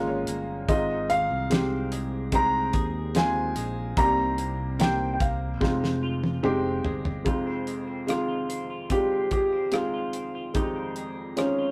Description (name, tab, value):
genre	pop ballad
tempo	73 BPM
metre	4/4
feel	straight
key	F minor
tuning	A4 = 439 Hz
part	felt-muted upright piano	accompaniment	0.0-11.7 s	F2 to G5	-32 LUFS	equal	none
part	twelve-string electric guitar	arpeggios	0.0-11.7 s	F2 to Ab4	-42 LUFS	equal	none
part	modern bright fingered electric bass	bass	0.0-7.2 s	F1 to Eb2	-34 LUFS	equal	none
part	damped 70s drum kit	drums	0.3-11.6 s	hi-hat, kick drum, rim click, snare drum, toms	-30 LUFS	equal	none
part	dark concert grand piano	melody	0.7-11.7 s	Db4 to Bb5	-29 LUFS	equal	none
room	moderate studio reverb, RT60 0.6 s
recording	rough rehearsal-room recording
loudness	-27 LUFS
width	mono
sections	0.0-7.3 A section; 7.3-11.7 B section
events	felt piano fill 0.0-0.7; drum fill 5.6-7.3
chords	0.0 Db6; 0.7 Ab6; 4.0 Cm7; 5.6 Fm7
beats	| 0.69 1.51 2.33 3.15 | 3.98 4.80 5.62 6.44 | 7.26 8.08 8.91 9.73 | 10.55 11.37